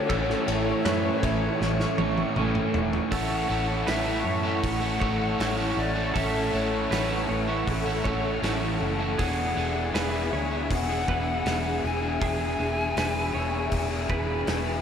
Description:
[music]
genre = rock, shoegaze and dream pop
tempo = 79 BPM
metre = 4/4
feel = straight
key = A major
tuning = A4 = 439 Hz
[part]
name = breathy bright pan flute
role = melody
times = 0.0-14.4 s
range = A4 to G#5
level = -32 LUFS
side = left 3 dB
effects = tape echo
[part]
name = airy breathy pad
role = sustained chords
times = 0.0-14.8 s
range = G#4 to C#6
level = -33 LUFS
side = equal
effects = chorus, phaser
[part]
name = crunchy overdriven guitar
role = riff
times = 0.0-14.8 s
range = A2 to G#4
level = -32 LUFS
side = right 7 dB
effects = reverse reverb
[part]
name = crunchy overdriven guitar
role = riff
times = 0.0-3.1 s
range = A2 to E4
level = -33 LUFS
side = right 3 dB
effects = none
[part]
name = overdriven electric guitar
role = riff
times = 0.0-14.8 s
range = A2 to A4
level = -30 LUFS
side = left 5 dB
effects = lush chorus
[part]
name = direct-recorded clean electric guitar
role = arpeggios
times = 0.1-14.8 s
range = G#4 to C#5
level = -36 LUFS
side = right 5 dB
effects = lush chorus, tape echo
[part]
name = vintage muted fingered electric bass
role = bass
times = 0.1-14.8 s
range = E1 to F#2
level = -31 LUFS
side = equal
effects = none
[part]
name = loose indie drum kit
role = drums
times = 0.1-14.7 s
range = hi-hat, kick drum, ride cymbal, snare drum, toms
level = -32 LUFS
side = equal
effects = none
[sound]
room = wet lush hall reverb, RT60 2.9 s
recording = dreamy mix soaked in reverb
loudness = -24 LUFS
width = side -8 dB against mid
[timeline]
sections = 0.0-3.1 A section; 3.1-14.8 B section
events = drum fill 1.6-3.1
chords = 0.1 A; 3.1 A6; 9.2 E7

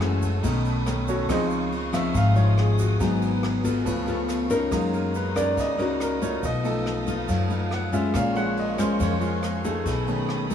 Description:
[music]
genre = bossa nova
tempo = 140 BPM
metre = 4/4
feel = straight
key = F# major from 4.7 s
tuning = A4 = 441 Hz
[part]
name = clear baby grand piano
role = accompaniment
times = 0.0-10.5 s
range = D#3 to F#5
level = -27 LUFS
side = right 2 dB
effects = none
[part]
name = nylon-string guitar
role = accompaniment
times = 0.0-10.5 s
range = Gb2 to Bb4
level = -26 LUFS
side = left 3 dB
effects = none
[part]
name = dark symphonic string section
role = sustained chords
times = 0.0-10.5 s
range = A#4 to Fb6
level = -35 LUFS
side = left 1 dB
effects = none
[part]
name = upright bass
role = bass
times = 0.0-10.5 s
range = Gb1 to F#2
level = -28 LUFS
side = equal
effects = none
[part]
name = jazz brush drum kit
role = drums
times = 0.0-10.5 s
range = kick drum, ride cymbal, rim click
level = -34 LUFS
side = equal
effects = none
[part]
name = tube shaker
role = percussion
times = 0.2-10.5 s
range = none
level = -46 LUFS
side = right 7 dB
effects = none
[sound]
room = light reverb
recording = small room ambience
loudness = -22 LUFS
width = side -9 dB against mid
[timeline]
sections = 0.0-4.7 A section; 4.7-10.5 A section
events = grand piano solo 0.0-10.5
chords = 0.4 Cb9; 1.3 Dbmaj9; 3.0 Abm7; 3.9 Dbaug7; 4.7 F#6; 6.4 B7#11; 8.1 A#m7; 9.9 B13

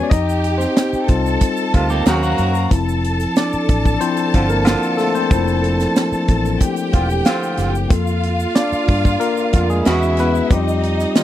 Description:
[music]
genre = lush 1970s-style soul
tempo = 92 BPM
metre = 4/4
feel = straight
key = unclear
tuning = A4 = 440 Hz
[part]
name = warm studio string section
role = second line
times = 0.0-11.2 s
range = Eb4 to Bb5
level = -23 LUFS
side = equal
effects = none
[part]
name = barky tine electric piano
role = accompaniment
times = 0.0-11.2 s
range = Eb3 to F5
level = -20 LUFS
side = moving between left 6 dB and equal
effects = overdrive, auto-pan
[part]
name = vintage muted fingered electric bass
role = bass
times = 0.1-11.0 s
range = E1 to G2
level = -20 LUFS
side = equal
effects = none
[part]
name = tight funk drum kit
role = drums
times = 0.1-11.2 s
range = hi-hat, kick drum, snare drum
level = -16 LUFS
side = right 1 dB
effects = none
[part]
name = egg shaker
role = percussion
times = 0.1-11.2 s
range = none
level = -40 LUFS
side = right 12 dB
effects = none
[part]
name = warm horn section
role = stabs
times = 1.7-10.3 s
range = C3 to Gb4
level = -22 LUFS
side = right 4 dB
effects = none
[part]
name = electric guitar at the edge of break-up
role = riff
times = 1.9-2.7 s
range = Bb3 to Ab4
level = -22 LUFS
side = right 4 dB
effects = wide subtle chorus
[sound]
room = little or no reverb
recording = dry, close 1970s-style studio recording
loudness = -15 LUFS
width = side -12 dB against mid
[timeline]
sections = 0.0-11.2 A section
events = tine electric piano solo 0.0-11.2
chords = 0.1 Eb69; 2.1 Ebm7; 2.7 Dm7/F; 7.9 Gm7/F; 9.9 E69; 10.5 Eb69

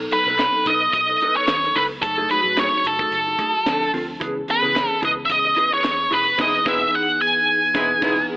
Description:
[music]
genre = polished 1980s jazz-funk pop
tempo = 110 BPM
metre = 4/4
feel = swing 54% on 16ths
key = F# dorian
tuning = A4 = 440 Hz
[part]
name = mellow tine electric piano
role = accompaniment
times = 0.0-8.4 s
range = E3 to A4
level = -28 LUFS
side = left 1 dB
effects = ensemble chorus
[part]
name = mellow electric guitar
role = riff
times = 0.0-8.2 s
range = A3 to B4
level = -30 LUFS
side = right 1 dB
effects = lush chorus
[part]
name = vintage muted fingered electric bass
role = bass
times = 0.0-8.2 s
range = E1 to C#3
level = -41 LUFS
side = equal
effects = none
[part]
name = octave-fuzz lead guitar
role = melody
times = 0.1-8.3 s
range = A4 to G#5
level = -18 LUFS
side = equal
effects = distortion
[part]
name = tight funk drum kit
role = drums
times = 0.1-8.2 s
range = crash cymbal, hi-hat, kick drum, snare drum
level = -28 LUFS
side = equal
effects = gated reverb
[part]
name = group handclap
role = percussion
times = 0.4-6.0 s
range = none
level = -33 LUFS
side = left 1 dB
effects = none
[part]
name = clear horn section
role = second line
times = 6.4-8.2 s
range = G#3 to B4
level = -29 LUFS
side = equal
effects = tape echo
[sound]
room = light reverb, studio reverb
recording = telephone sound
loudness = -17 LUFS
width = side -24 dB against mid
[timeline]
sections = 0.0-8.4 A section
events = band accent 6.4-8.4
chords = 0.0 B7; 2.0 F#m69; 3.7 Dm7; 4.2 C#m7; 6.4 Emaj7

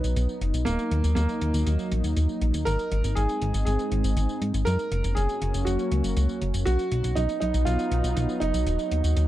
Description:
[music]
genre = italo disco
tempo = 120 BPM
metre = 4/4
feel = straight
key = Eb minor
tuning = A4 = 440 Hz
[part]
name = warm concert grand piano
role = melody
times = 0.0-9.3 s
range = Bb3 to Bb4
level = -29 LUFS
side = right 2 dB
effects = tape echo
[part]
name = lush unison pad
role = sustained chords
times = 0.0-9.3 s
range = Gb3 to D#4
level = -31 LUFS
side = equal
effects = chorus
[part]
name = chorused synth bass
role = bass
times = 0.0-9.3 s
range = Eb1 to Ab2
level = -24 LUFS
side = equal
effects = none
[part]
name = electronic hi-hat and tambourine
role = drums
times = 0.0-9.3 s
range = none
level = -40 LUFS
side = left 1 dB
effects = small room ambience
[sound]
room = little or no reverb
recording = dry, close 1970s-style studio recording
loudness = -23 LUFS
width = side -14 dB against mid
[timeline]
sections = 0.0-9.3 A section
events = filter sweep on analog synth pad 0.0-9.3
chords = 0.0 B; 0.7 Ebm; 2.7 Ab; 4.7 Gb; 6.7 B; 8.7 Ebm

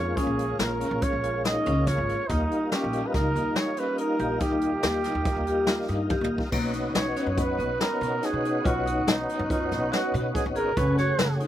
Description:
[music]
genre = progressive instrumental, band music in an uneven meter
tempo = 141 BPM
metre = 5/4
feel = straight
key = B lydian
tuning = A4 = 440 Hz
[part]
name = mellow trumpet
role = melody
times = 0.0-11.4 s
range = D#4 to D#5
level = -29 LUFS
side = right 3 dB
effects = none
[part]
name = tonewheel organ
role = accompaniment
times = 0.0-11.5 s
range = G3 to G#4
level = -31 LUFS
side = left 1 dB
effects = chorus vibrato, slow rotary speaker
[part]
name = vibraphone with medium hard mallets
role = arpeggios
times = 0.0-11.5 s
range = A#3 to G#4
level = -30 LUFS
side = left 2 dB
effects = none
[part]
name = upright bass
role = bass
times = 0.0-11.4 s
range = F#1 to B2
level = -30 LUFS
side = equal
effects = none
[part]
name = jazz brush drum kit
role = drums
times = 0.2-11.5 s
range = crash cymbal, hi-hat, kick drum, snare drum, toms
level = -29 LUFS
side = left 1 dB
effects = none
[sound]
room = little or no reverb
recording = recorded outdoors, with no room sound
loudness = -23 LUFS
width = side -12 dB against mid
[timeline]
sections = 0.0-6.5 A section; 6.5-11.5 B section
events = drum fill 6.1-6.5; trumpet solo 6.5-11.5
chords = 0.0 A#m7; 2.3 D#add9; 6.5 B; 10.8 F#madd9

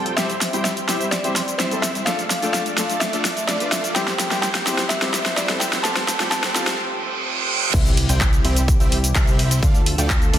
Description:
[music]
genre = EDM, festival progressive house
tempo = 127 BPM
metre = 4/4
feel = straight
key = C major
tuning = A4 = 439 Hz
[part]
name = bell-like FM electric piano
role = melody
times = 0.0-6.8 s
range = C5 to A5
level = -27 LUFS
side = equal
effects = chorus, tape echo
[part]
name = lush unison pad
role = sustained chords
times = 0.0-10.4 s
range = C3 to D5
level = -31 LUFS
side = right 1 dB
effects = chorus, sidechain pumping
[part]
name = dense compressed supersaw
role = riff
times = 0.0-10.4 s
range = G3 to G5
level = -27 LUFS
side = right 1 dB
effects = sidechain pumping, low-pass filter, tape echo
[part]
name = riser, reverse cymbal and impact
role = sound effects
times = 0.8-9.6 s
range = none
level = -29 LUFS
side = right 3 dB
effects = none
[part]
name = big-room dance drum kit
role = drums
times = 0.1-10.4 s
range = cabasa, crash cymbal, handclaps, hi-hat, snare drum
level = -22 LUFS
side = equal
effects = overdrive, studio reverb
[part]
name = felt-muted upright piano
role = accompaniment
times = 0.2-6.8 s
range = G3 to B4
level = -29 LUFS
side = left 3 dB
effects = sidechain pumping, tape echo
[part]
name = fat analog bass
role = bass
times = 7.7-10.4 s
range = C2 to D2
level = -21 LUFS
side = equal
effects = sidechain pumping
[part]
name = electronic kick drum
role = drums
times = 7.7-10.2 s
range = none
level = -18 LUFS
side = equal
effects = overdrive, studio reverb
[sound]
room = moderate recital hall reverb, RT60 1.4 s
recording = dense, heavily limited modern master, high-pass filter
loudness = -18 LUFS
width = side -11 dB against mid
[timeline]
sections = 0.0-7.7 A section; 7.7-10.4 B section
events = build-up 0.0-7.7; drum fill 0.0-6.8; reverse cymbal 6.8-7.7; drop 7.7-10.4; impact 7.7-9.6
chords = 0.2 C; 2.1 Dm; 4.0 C; 5.8 Fadd9; 7.7 C; 9.6 Dm

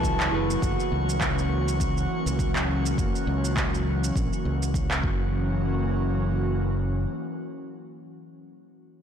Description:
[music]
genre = sunset chillout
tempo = 102 BPM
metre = 4/4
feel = swing 58% on 16ths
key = unclear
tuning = A4 = 435 Hz
[part]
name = vintage hollow-body jazz guitar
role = accompaniment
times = 0.0-0.6 s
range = F#3 to B4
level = -31 LUFS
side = right 2 dB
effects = auto-pan, ping-pong delay
[part]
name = airy breathy pad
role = sustained chords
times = 0.0-8.4 s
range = E3 to F#4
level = -29 LUFS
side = equal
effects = chorus
[part]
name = modern bright fingered electric bass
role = bass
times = 0.0-7.1 s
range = F#1 to C#2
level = -27 LUFS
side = equal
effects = none
[part]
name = electronic kick drum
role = drums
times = 0.0-5.2 s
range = none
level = -29 LUFS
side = equal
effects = overdrive, studio reverb
[part]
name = electronic shaker and handclaps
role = drums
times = 0.0-5.0 s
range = none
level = -32 LUFS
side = right 1 dB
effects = overdrive, studio reverb
[part]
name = drifting glass-harmonics texture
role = texture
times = 0.0-5.3 s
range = F#4 to F#5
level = -35 LUFS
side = equal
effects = chorus, built-in reverb
[sound]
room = moderate concert hall reverb, RT60 2.2 s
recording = blown-out, overdriven recording, overdrive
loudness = -23 LUFS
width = side -8 dB against mid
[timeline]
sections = 0.0-5.3 A section; 5.3-7.7 B section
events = none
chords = 0.0 F#m11; 0.6 F#7

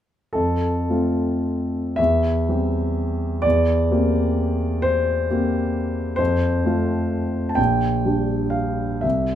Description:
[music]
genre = classical, romantic nocturne for solo piano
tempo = 36-45 BPM (dotted quarters)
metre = 6/8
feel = rubato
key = F major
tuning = A4 = 440 Hz
[part]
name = warm concert grand piano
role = solo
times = 0.3-9.4 s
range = Bb1 to A5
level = -19 LUFS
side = equal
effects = none
[sound]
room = light reverb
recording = minimal, uncompressed stereo recording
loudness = -19 LUFS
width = side -10 dB against mid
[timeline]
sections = 0.4-9.4 A section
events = none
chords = 0.4 F; 2.0 C/E; 3.4 C7/E; 6.2 F; 7.6 Gm/Bb

